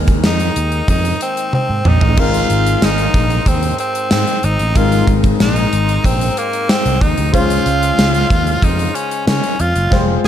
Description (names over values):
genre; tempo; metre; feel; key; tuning
1980s-style pop; 93 BPM; 4/4; straight; unclear; A4 = 440 Hz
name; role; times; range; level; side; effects
clear concert grand piano; accompaniment; 0.0-10.3 s; Ab2 to G5; -21 LUFS; left 4 dB; none
sustaining fretless electric bass; bass; 0.0-10.3 s; F1 to Db3; -18 LUFS; right 1 dB; none
gated 80s drum kit; drums; 0.1-10.3 s; crash cymbal, hi-hat, kick drum, snare drum, tambourine, toms; -16 LUFS; equal; none
raspy tenor saxophone; melody; 0.3-10.3 s; Bb3 to F4; -18 LUFS; equal; ping-pong delay
room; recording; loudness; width
light reverb, small room ambience; dark, warm production; -12 LUFS; side -10 dB against mid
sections
0.0-10.3 A section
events
drum fill 1.5-2.2, 9.9-10.3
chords
0.0 Ebsus4; 2.2 Abadd9; 7.3 Dbmaj7